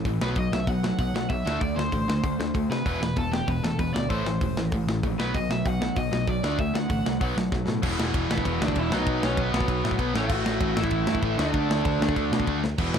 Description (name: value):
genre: punk rock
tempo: 193 BPM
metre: 4/4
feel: straight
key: unclear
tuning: A4 = 439 Hz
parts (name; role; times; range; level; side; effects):
- biting overdriven guitar; riff; 0.0-13.0 s; E2 to D4; -30 LUFS; right 10 dB; none
- distorted electric guitar; riff; 0.0-13.0 s; E2 to D4; -30 LUFS; left 13 dB; overdrive
- picked electric bass; bass; 0.1-13.0 s; E1 to C3; -30 LUFS; equal; none
- tight metal drum kit; drums; 0.1-13.0 s; crash cymbal, hi-hat, kick drum, ride cymbal, snare drum; -29 LUFS; equal; none
- overdriven semi-hollow guitar; melody; 0.2-12.6 s; B3 to F#5; -31 LUFS; equal; ping-pong delay
room: light reverb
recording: none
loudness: -23 LUFS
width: side -8 dB against mid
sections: 0.0-7.8 A section; 7.8-13.0 B section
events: drum fill 7.5-7.8, 12.6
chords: 0.2 B5; 1.5 D5; 2.9 E5; 4.1 Am; 5.2 B; 6.4 D; 7.2 B5; 7.8 E5; 8.9 B; 10.2 A5; 11.4 D5